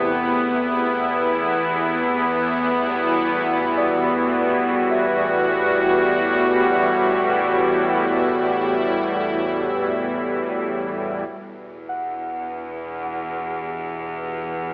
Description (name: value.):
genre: ambient.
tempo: free time.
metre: none.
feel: none.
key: unclear.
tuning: A4 = 440 Hz.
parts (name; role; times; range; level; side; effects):
warm analog pad; sustained chords; 0.0-14.7 s; E2 to G4; -19 LUFS; equal; chorus, tremolo.
muted felt-like synth keys; arpeggios; 0.0-14.7 s; D5 to G5; -30 LUFS; equal; chorus, diffuse ambient delay.
bowed-like drone; drone; 0.0-14.7 s; E3 to E4; -27 LUFS; equal; built-in reverb, phaser.
bright studio cello section; bass; 11.3-14.7 s; E2; -29 LUFS; equal; none.
room: wet scoring stage reverb, RT60 2.1 s.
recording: cassette tape, telephone sound.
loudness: -18 LUFS.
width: side -26 dB against mid.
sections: 0.0-11.3 A section; 11.3-14.7 B section.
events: none.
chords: 0.0 Am9/E; 2.1 Gmaj9/E; 11.3 Em7.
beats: free time.